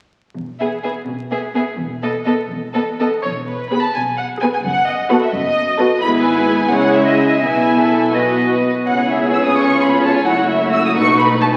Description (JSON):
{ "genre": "quick classical-period movement for symphony orchestra", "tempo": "85 BPM (dotted quarters)", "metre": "6/8", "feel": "rubato", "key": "E major", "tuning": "A4 = 439 Hz", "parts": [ { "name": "dark chamber cello section", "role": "bass", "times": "0.4-11.6 s", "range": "E2 to C#3", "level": "-26 LUFS", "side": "equal", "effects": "none" }, { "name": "dark chamber double bass section", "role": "bass", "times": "0.4-11.6 s", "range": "E1 to C#2", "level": "-35 LUFS", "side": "equal", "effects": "none" }, { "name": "warm chamber violin section", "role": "melody", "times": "0.6-11.6 s", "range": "B4 to E6", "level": "-21 LUFS", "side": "equal", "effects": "none" }, { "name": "warm chamber violin section", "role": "second line", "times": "0.6-11.6 s", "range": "F#4 to E5", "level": "-22 LUFS", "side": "equal", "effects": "none" }, { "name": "warm chamber viola section", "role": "accompaniment", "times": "0.6-11.6 s", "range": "G#3 to G#4", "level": "-20 LUFS", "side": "equal", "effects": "none" } ], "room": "wet scoring stage reverb, RT60 1.6 s", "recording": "very old 78 rpm record, vinyl crackle", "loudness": "-16 LUFS", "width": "mono", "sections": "0.4-3.2 A section; 3.2-11.6 B section", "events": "none", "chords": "0.4 E; 4.7 B7/F#; 6.0 E/G#; 6.7 C#m; 7.4 E/B; 8.1 B; 8.9 C#m7; 9.6 C#7; 10.3 F#m7; 11.0 B7" }